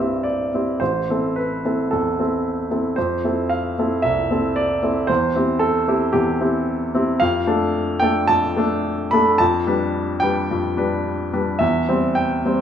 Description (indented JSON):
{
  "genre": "classical, romantic character piece for solo piano",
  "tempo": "111 BPM",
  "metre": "4/4",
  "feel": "uneven beats, rubato",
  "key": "C major",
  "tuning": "A4 = 440 Hz",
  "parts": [
    { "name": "clear baby grand piano", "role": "solo", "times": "0.0-12.6 s", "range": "A1 to B5", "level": "-18 LUFS", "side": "equal", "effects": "none" }
  ],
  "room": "wet recital hall reverb, RT60 1.4 s",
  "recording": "minimal, uncompressed stereo recording",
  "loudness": "-18 LUFS",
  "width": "side -9 dB against mid",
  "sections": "0.0-12.6 A section",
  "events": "none",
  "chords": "0.0 C; 0.8 Am; 3.0 Fmaj7; 5.1 C/E; 7.2 Dm/F; 11.6 C/E"
}